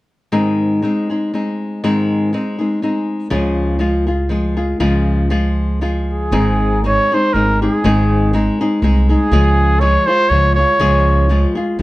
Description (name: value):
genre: mexican folk, mariachi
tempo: 121 BPM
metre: 3/4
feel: swing 54% on 8ths, rubato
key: Ab major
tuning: A4 = 440 Hz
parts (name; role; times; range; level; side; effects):
- nylon-string guitar; accompaniment; 0.3-11.8 s; Ab2 to Ab4; -16 LUFS; left 1 dB; none
- upright bass; bass; 3.3-11.8 s; Ab1 to D2; -16 LUFS; right 1 dB; none
- warm trumpet; melody; 6.1-11.5 s; Ab4 to Db5; -16 LUFS; right 1 dB; plate reverb
room: moderate studio reverb, RT60 0.6 s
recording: none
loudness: -13 LUFS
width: side -18 dB against mid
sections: 0.3-6.3 A section; 6.3-11.8 B section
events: none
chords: 0.3 Ab; 3.3 Db; 6.3 Ab; 9.3 Db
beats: | 0.31 0.82 1.32 | 1.82 2.32 2.81 | 3.31 3.81 4.30 | 4.80 5.30 5.82 | 6.33 6.83 7.34 | 7.83 8.32 8.81 | 9.30 9.80 10.29 | 10.79 11.29 11.79